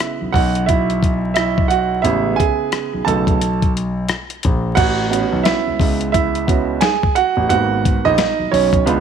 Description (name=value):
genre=hip hop, jazz-hop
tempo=88 BPM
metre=4/4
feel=swing 62% on 16ths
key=A major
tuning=A4 = 440 Hz
part: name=warm concert grand piano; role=accompaniment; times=0.0-9.0 s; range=C#3 to A5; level=-17 LUFS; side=right 9 dB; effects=none
part: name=dusty soul sampler-style drum kit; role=drums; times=0.0-9.0 s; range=crash cymbal, hi-hat, kick drum, rim click, snare drum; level=-19 LUFS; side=left 2 dB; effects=none
part: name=dark grand piano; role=bass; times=0.2-9.0 s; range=G#1 to C#2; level=-20 LUFS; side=left 1 dB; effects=none
room=light reverb, studio reverb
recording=1960s-style stereo, vinyl crackle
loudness=-15 LUFS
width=side -7 dB against mid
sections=0.0-4.8 A section; 4.8-9.0 B section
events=grand piano solo 0.0-4.8, 4.8-9.0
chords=0.0 Amaj7; 4.8 A69; 7.5 G#m9